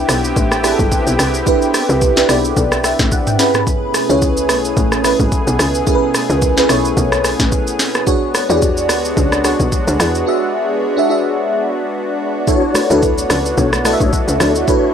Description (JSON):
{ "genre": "amapiano", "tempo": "109 BPM", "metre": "4/4", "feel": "swing 55% on 16ths", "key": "A major", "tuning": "A4 = 440 Hz", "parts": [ { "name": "FM electric piano with soft pad layer", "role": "accompaniment", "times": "0.0-14.9 s", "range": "C#4 to B5", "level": "-16 LUFS", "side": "right 1 dB", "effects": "chorus, phaser" }, { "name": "lush unison pad", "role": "sustained chords", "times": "0.0-14.9 s", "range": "B2 to G#4", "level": "-21 LUFS", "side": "left 1 dB", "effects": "chorus, sidechain pumping" }, { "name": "tight log drum bass", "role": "bass", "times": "0.0-14.6 s", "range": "G1 to E2", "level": "-18 LUFS", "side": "equal", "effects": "none" }, { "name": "smooth R&B drum kit", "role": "drums", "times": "0.1-14.8 s", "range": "hi-hat, kick drum, rim click, shaker, snare drum, toms", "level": "-17 LUFS", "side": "equal", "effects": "overdrive" }, { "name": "mellow tonewheel organ", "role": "stabs", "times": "12.5-14.9 s", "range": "D4 to C#5", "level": "-19 LUFS", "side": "left 4 dB", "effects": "chorus vibrato, fast rotary speaker, analog delay" }, { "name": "congas", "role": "percussion", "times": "12.7-14.5 s", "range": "none", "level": "-26 LUFS", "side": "equal", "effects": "none" } ], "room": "light reverb", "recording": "dry, gritty hardware recording", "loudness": "-12 LUFS", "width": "side -8 dB against mid", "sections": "0.0-14.9 A section", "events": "FM electric piano fill 2.6-3.7; break 10.3-12.5", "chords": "0.0 Cmaj7; 3.4 Amaj9; 8.1 E13; 12.5 Dmaj7", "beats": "0.37 0.92 | 1.47 2.02 2.57 3.12 | 3.67 4.22 4.77 5.32 | 5.87 6.42 6.97 7.52 | 8.07 8.62 9.17 9.72 | 10.27 10.82 11.38 11.93 | 12.48 13.03 13.58 14.13 | 14.68" }